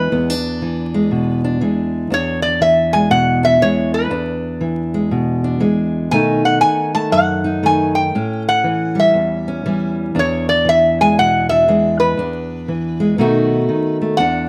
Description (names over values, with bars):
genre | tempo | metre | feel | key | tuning
acoustic country blues, solo or duo | 119 BPM | 4/4 | swing 64% on 8ths | E mixolydian | A4 = 439 Hz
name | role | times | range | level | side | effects
metal-body resonator slide guitar | melody | 0.0-14.5 s | B4 to A5 | -18 LUFS | equal | plate reverb
fingerpicked steel-string acoustic guitar | accompaniment | 0.0-14.5 s | E2 to F#4 | -19 LUFS | equal | none
room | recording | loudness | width
moderate booth ambience, RT60 0.2 s | vinyl crackle | -16 LUFS | mono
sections
0.0-14.2 A section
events
none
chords
0.0 E7; 6.1 B7; 8.1 A7; 10.2 E7; 13.2 B7